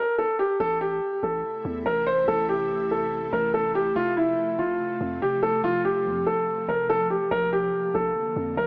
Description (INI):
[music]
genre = hip hop, drill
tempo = 143 BPM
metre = 4/4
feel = half-time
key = A phrygian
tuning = A4 = 442 Hz
[part]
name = dark concert grand piano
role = melody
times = 0.0-8.7 s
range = E4 to C5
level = -25 LUFS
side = equal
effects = low-pass filter
[part]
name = ethereal airy pad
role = sustained chords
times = 1.3-8.7 s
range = C3 to E4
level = -37 LUFS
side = equal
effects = ensemble chorus, built-in reverb
[part]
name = long sustained 808-style bass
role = bass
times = 0.6-8.7 s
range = F1 to F2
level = -38 LUFS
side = equal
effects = none
[sound]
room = light reverb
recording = small speaker sound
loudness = -25 LUFS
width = mono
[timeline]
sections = 0.6-8.7 A section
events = break 0.0-0.6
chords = 0.0 Bb5; 0.6 Am; 4.0 F; 7.3 Bb